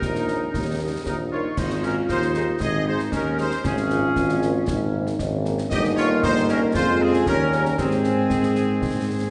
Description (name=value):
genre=military-style march for wind band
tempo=116 BPM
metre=2/4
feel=straight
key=Ab major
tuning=A4 = 441 Hz
part: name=bright trumpet section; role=melody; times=0.0-9.3 s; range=Ab4 to Eb5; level=-31 LUFS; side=equal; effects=none
part: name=warm euphonium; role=second line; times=0.0-9.3 s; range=C4 to G4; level=-30 LUFS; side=equal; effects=none
part: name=warm woodwind section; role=second line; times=0.0-9.3 s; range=C4 to Ab4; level=-31 LUFS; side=equal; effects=none
part: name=clear tuba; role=bass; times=0.0-9.3 s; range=G1 to Ab2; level=-27 LUFS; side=equal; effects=none
part: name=concert snare drum, concert bass drum and clash cymbals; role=drums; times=0.0-9.3 s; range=none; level=-32 LUFS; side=equal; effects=none
part: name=dark French horn section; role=accompaniment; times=0.3-9.3 s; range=Bb2 to Db4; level=-30 LUFS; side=equal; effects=none
room=wet recital hall reverb, RT60 1.7 s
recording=recorded in a church or concert hall, nothing above 10.7 kHz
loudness=-22 LUFS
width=mono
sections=0.0-9.3 A section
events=none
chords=0.0 Ebsus4; 0.5 Eb; 1.6 Ab5; 3.6 Bbm7/Ab; 5.7 Eb/G; 6.8 Fm; 7.3 Eb7; 7.8 Ab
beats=0.02 | 0.54 1.06 | 1.57 2.09 | 2.61 3.13 | 3.65 4.16 | 4.68 5.20 | 5.72 6.24 | 6.75 7.27 | 7.79 8.31 | 8.83